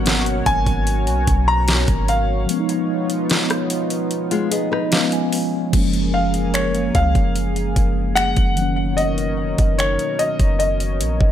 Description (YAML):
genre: contemporary R&B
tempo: 74 BPM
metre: 4/4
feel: straight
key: F# major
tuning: A4 = 440 Hz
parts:
  - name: warm concert grand piano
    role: melody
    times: 0.0-11.3 s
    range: C#5 to A#5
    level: -22 LUFS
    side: left 1 dB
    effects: digital delay
  - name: mellow tine electric piano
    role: accompaniment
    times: 0.0-11.3 s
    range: D#3 to G#5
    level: -24 LUFS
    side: equal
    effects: medium stereo tremolo
  - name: chorused pulse-width pad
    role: sustained chords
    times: 0.0-11.3 s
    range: B2 to G#5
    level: -27 LUFS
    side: equal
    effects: sidechain pumping
  - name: soft 808-style bass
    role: bass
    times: 0.0-11.3 s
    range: F#1 to C#2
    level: -21 LUFS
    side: equal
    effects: none
  - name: smooth R&B drum kit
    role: drums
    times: 0.1-11.3 s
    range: crash cymbal, finger snaps, hi-hat, kick drum, rim click, snare drum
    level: -21 LUFS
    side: equal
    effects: none
  - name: nylon-string guitar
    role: arpeggios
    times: 4.3-5.7 s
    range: G#3 to B4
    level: -24 LUFS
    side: left 5 dB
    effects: none
room: light reverb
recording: none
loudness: -16 LUFS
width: side -10 dB against mid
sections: 0.0-5.7 A section; 5.7-11.3 B section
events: break 2.5-5.7; tine electric piano fill 4.1-5.7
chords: 0.0 G#m11; 2.5 C#9; 5.7 F#maj9; 8.6 Bmaj9/F#